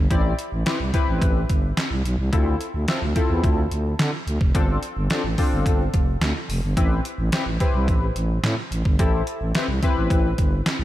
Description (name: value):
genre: early-eighties boogie funk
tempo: 108 BPM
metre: 4/4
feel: straight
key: A minor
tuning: A4 = 443 Hz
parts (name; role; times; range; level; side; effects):
- growling FM bass; bass; 0.0-10.8 s; F1 to D3; -23 LUFS; equal; none
- chorused polysynth; accompaniment; 0.1-10.3 s; C4 to D5; -27 LUFS; left 3 dB; slapback echo
- detuned 8-bit digital drum machine; drums; 0.1-10.8 s; handclaps, hi-hat, kick drum, snare drum; -22 LUFS; equal; none
room: light reverb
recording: none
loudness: -19 LUFS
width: side -14 dB against mid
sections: 0.0-10.8 A section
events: none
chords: 0.0 Am7; 2.3 Dm7; 4.5 G7sus4; 6.8 Am7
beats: | 0.10 0.66 1.21 1.77 | 2.33 2.88 3.44 3.99 | 4.55 5.10 5.66 6.21 | 6.77 7.33 7.88 8.44 | 8.99 9.55 10.10 10.66